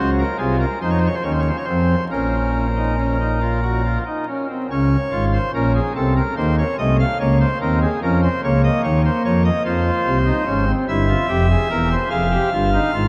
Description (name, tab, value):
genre	classical, baroque-style 3-part fugue for pipe organ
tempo	48 BPM (dotted quarters)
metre	6/8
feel	straight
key	Bb minor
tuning	A4 = 439 Hz
part	pipe organ, cornet	solo	0.0-13.1 s	E1 to F5	-19 LUFS	equal	none
room	wet huge ambient reverb, RT60 8.3 s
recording	in a vast, echoing space, vinyl crackle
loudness	-19 LUFS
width	mono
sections	0.0-4.7 A section; 4.7-13.1 B section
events	none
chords	0.0 Cdim; 0.8 F5; 2.1 Bbm; 6.0 F7/C; 7.2 Bbm/Db; 9.7 Fm; 10.9 C7; 12.1 Fm